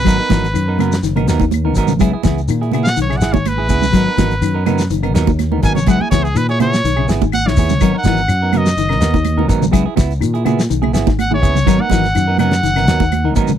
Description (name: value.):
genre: afrobeat.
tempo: 124 BPM.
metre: 4/4.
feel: straight.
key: G# minor.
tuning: A4 = 440 Hz.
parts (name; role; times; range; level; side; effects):
bright trumpet; melody; 0.0-13.3 s; G#4 to G#5; -19 LUFS; equal; none.
mellow electric guitar; arpeggios; 0.0-13.6 s; C#3 to F#3; -20 LUFS; left 9 dB; none.
fingered electric bass; bass; 0.0-13.6 s; F#1 to A#2; -18 LUFS; equal; none.
semi-hollow electric guitar; stabs; 0.1-13.5 s; F#3 to A#4; -22 LUFS; right 9 dB; none.
damped 70s drum kit; drums; 0.1-13.6 s; hi-hat, kick drum, snare drum; -18 LUFS; equal; none.
claves; percussion; 0.1-13.2 s; none; -32 LUFS; left 17 dB; none.
congas; percussion; 0.1-13.6 s; none; -20 LUFS; right 15 dB; none.
shekere; percussion; 0.1-13.6 s; none; -24 LUFS; left 3 dB; none.
room: little or no reverb.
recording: dry, close 1970s-style studio recording.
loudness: -12 LUFS.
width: side -10 dB against mid.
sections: 0.0-13.6 A section.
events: trumpet solo 0.0-13.6.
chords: 0.1 G#m9; 2.0 C#m7; 3.9 G#m9; 5.9 C#m7; 7.8 G#m9; 9.7 C#m7; 11.7 G#m9.